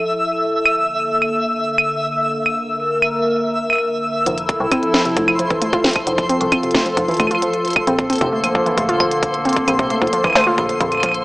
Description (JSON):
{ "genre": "IDM", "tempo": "133 BPM", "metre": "4/4", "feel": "straight", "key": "F major", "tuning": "A4 = 440 Hz", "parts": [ { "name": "hollow soft pad", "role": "sustained chords", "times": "0.0-11.2 s", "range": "D3 to Bb4", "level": "-21 LUFS", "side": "equal", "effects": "chorus, vintage 12-bit sampler grit" }, { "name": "twinkling granular texture", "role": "texture", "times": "0.0-11.2 s", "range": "C5 to E5", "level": "-21 LUFS", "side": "equal", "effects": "built-in reverb" }, { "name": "industrial drum kit", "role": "drums", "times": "0.7-11.2 s", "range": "claves, hi-hat, snare drum", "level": "-18 LUFS", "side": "equal", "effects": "none" }, { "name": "warbly dusty pluck", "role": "arpeggios", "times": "4.3-11.1 s", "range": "F2 to F4", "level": "-21 LUFS", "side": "equal", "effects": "chorus, digital delay" }, { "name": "metallic FM bass", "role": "bass", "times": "4.3-11.2 s", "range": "F1 to C2", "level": "-25 LUFS", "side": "equal", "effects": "none" }, { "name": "electronic kick drum", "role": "drums", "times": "4.5-11.1 s", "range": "none", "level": "-23 LUFS", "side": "equal", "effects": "none" } ], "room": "moderate lush hall reverb, RT60 2.1 s", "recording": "small speaker sound", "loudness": "-15 LUFS", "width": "side -22 dB against mid", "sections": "0.0-4.3 A section; 4.3-11.2 B section", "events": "none", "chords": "0.0 Fmaj7; 0.7 Bbmaj7; 4.3 Fmaj7; 7.9 Bbmaj7" }